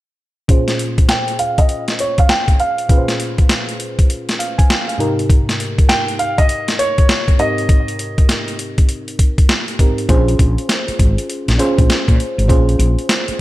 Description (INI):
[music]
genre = R&B, new jack swing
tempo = 100 BPM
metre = 4/4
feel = swing 64% on 16ths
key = Bb dorian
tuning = A4 = 440 Hz
[part]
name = mellow FM electric piano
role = accompaniment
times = 0.5-13.4 s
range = Ab2 to Ab5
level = -21 LUFS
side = right 1 dB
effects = chorus, low-pass filter
[part]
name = boom bap sampler-style drum kit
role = drums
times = 0.5-13.4 s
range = hi-hat, kick drum, snare drum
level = -14 LUFS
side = equal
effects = gated reverb
[part]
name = warm grand piano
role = melody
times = 1.1-8.6 s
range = Db5 to G5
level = -19 LUFS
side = right 1 dB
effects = low-pass filter
[part]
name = woody fretless electric bass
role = bass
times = 10.1-13.3 s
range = Ab1 to Bb2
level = -15 LUFS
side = equal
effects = none
[sound]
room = little or no reverb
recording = none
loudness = -13 LUFS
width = side -16 dB against mid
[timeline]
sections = 0.5-10.1 A section; 10.1-13.4 B section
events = filter sweep 0.5-10.1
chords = 0.5 Bbm9; 5.0 Abmaj9; 10.1 Bbm9